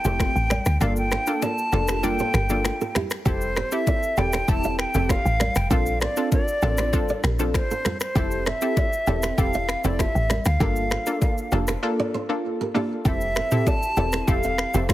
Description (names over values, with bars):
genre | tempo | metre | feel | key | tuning
afrobeats | 98 BPM | 4/4 | straight | F major | A4 = 439 Hz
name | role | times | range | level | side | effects
silver concert flute | melody | 0.0-14.9 s | C5 to A5 | -27 LUFS | equal | none
analog pluck | accompaniment | 0.0-14.9 s | A3 to A4 | -27 LUFS | equal | chorus
woody log drum bass | bass | 0.0-14.9 s | E1 to D2 | -25 LUFS | equal | none
afro-pop drum kit | drums | 0.0-14.9 s | finger snaps, kick drum, rim click, shaker, toms | -26 LUFS | equal | none
nylon-string guitar | riff | 0.1-14.9 s | E4 to E5 | -31 LUFS | right 3 dB | none
bongos and congas | percussion | 0.1-14.9 s | none | -34 LUFS | left 3 dB | none
room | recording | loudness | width
light reverb, small room ambience | heavily compressed radio sound, multiband compression | -20 LUFS | side -15 dB against mid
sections
0.0-13.1 A section; 13.1-14.9 B section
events
kick muted 0.8-3.3; break 11.8-13.1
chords
0.0 Fmaj7; 5.7 Bbmaj7; 8.2 Fmaj7; 10.6 Gm7; 13.1 Fmaj7